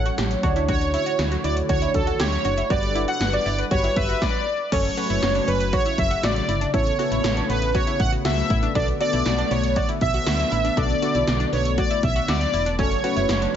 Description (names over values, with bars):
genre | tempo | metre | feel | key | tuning
synth-pop | 119 BPM | 4/4 | straight | B minor | A4 = 441 Hz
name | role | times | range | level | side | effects
analog synth brass | melody | 0.0-13.6 s | A4 to F#5 | -24 LUFS | right 1 dB | chorus
warm analog keys | accompaniment | 0.0-13.6 s | A3 to C#5 | -29 LUFS | equal | chorus
chorused pulse-width pad | sustained chords | 0.0-13.6 s | C#3 to F#5 | -29 LUFS | left 2 dB | none
solid FM bass | bass | 0.0-13.5 s | E1 to D2 | -26 LUFS | equal | none
analog pluck | arpeggios | 0.1-13.5 s | B3 to G4 | -32 LUFS | left 1 dB | chorus, phaser, tape echo
80s electronic pad drums | drums | 0.1-13.5 s | crash cymbal, hi-hat, kick drum, snare drum | -26 LUFS | equal | gated reverb
room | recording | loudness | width
light reverb | nothing above 7.6 kHz | -19 LUFS | side -9 dB against mid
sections
0.0-4.7 A section; 4.7-13.6 B section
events
stop 4.2-4.7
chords
0.4 Dmaj7; 2.7 Gmaj7; 4.7 F#m; 6.7 Aadd9; 8.8 Bm7; 12.8 F#m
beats
0.18 | 0.69 1.19 1.70 2.20 | 2.70 3.21 3.71 4.22 | 4.72 5.22 5.73 6.23 | 6.74 7.24 7.75 8.25 | 8.75 9.26 9.76 10.27 | 10.77 11.28 11.78 12.28 | 12.79 13.29